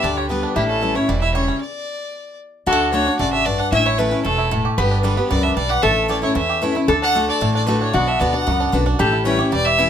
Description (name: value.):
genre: bluegrass.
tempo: 228 BPM.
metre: 4/4.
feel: straight.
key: D major.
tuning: A4 = 439 Hz.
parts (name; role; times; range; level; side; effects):
bluegrass banjo; melody; 0.0-9.9 s; G3 to G4; -25 LUFS; right 7 dB; none.
rich fiddle; melody; 0.0-9.9 s; G4 to F#5; -21 LUFS; equal; none.
lap resonator guitar; second line; 0.0-9.9 s; E4 to B4; -23 LUFS; left 2 dB; none.
picked steel-string acoustic guitar; accompaniment; 0.0-9.9 s; E2 to G4; -22 LUFS; left 2 dB; none.
upright bass; bass; 0.0-9.9 s; E1 to E2; -24 LUFS; right 1 dB; none.
room: light reverb.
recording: minimal, uncompressed stereo recording.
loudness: -16 LUFS.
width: side -9 dB against mid.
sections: 0.0-2.7 A section; 2.7-9.9 B section.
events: stop 1.6-2.7.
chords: 0.0 G; 0.6 A7; 1.6 N.C.; 2.7 D; 3.7 A; 4.8 G; 5.8 A; 6.9 D; 7.9 Bm; 9.0 A7.